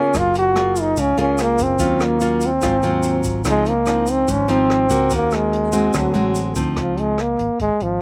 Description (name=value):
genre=bossa nova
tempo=145 BPM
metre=4/4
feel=straight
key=Db major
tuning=A4 = 444 Hz
part: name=warm trombone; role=melody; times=0.0-8.0 s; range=F3 to Gb4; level=-20 LUFS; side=equal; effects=none
part: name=nylon-string guitar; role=accompaniment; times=0.0-7.2 s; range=Ab2 to Ab4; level=-24 LUFS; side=equal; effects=slapback echo
part: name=fingered electric bass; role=bass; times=0.1-8.0 s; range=Gb1 to Eb2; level=-28 LUFS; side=equal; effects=none
part: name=jazz brush drum kit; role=drums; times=0.1-7.9 s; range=hi-hat, kick drum, rim click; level=-31 LUFS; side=equal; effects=none
part: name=tube shaker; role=percussion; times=0.1-6.8 s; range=none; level=-36 LUFS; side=equal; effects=none
room=little or no reverb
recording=recorded outdoors, with no room sound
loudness=-18 LUFS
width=mono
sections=0.0-6.8 A section; 6.8-8.0 B section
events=none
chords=0.1 Gbmaj9; 1.8 Ebm9; 2.6 Ab6; 3.5 Dbmaj9; 5.1 Ebm7; 5.9 D7#11; 6.8 Dbmaj9